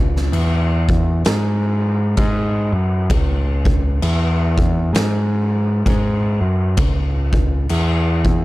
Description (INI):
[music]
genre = stoner and doom metal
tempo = 65 BPM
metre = 4/4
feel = swing 60% on 8ths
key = C# minor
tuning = A4 = 440 Hz
[part]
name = growling picked electric bass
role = bass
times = 0.0-8.4 s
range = C#2 to G#2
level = -17 LUFS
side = equal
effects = overdrive
[part]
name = oversized low-tuned drum kit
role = drums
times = 0.2-8.4 s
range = crash cymbal, kick drum, snare drum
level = -20 LUFS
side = equal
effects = none
[sound]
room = little or no reverb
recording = none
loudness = -15 LUFS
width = side -18 dB against mid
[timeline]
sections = 0.0-8.4 A section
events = none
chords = none